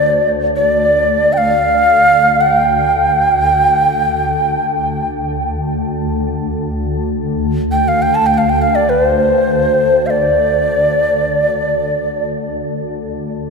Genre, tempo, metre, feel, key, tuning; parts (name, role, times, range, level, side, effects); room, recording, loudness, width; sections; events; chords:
world meditative, free-time meditation music; free time; D minor pentatonic; A4 = 440 Hz
breathy mellow Native American-style cedar flute; melody; 0.0-12.2 s; C5 to A5; -12 LUFS; right 1 dB; tape echo
shimmering ambient pad; drone; 0.0-13.5 s; D2; -19 LUFS; left 1 dB; chorus, built-in reverb
wet cathedral reverb, RT60 5.1 s; in a vast, echoing space; -12 LUFS; side -4 dB against mid
0.0-13.0 A section